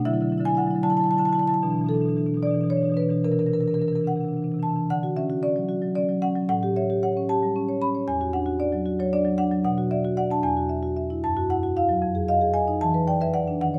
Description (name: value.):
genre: classical, contemporary piece for solo marimba.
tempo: 76 BPM (dotted quarters).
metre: 6/8.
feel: straight.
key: D lydian.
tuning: A4 = 441 Hz.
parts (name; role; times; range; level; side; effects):
marimba with medium mallets; solo; 0.0-13.8 s; E2 to B5; -24 LUFS; equal; none.
room: light reverb.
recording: close, detailed microphones.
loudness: -24 LUFS.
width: mono.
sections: 0.0-4.9 A section; 4.9-13.8 B section.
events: none.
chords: 0.1 Dadd9; 1.6 Bm7; 3.2 C9; 4.9 Dmaj7; 6.5 A7; 8.1 Esus2; 9.6 Bm; 10.4 Esus2; 11.2 F#m7; 12.0 Fm7; 12.8 E5.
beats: | 0.05 0.83 | 1.62 2.43 | 3.24 4.07 | 4.89 5.69 | 6.49 7.29 | 8.08 8.86 | 9.64 10.43 | 11.23 12.02 | 12.80 13.60.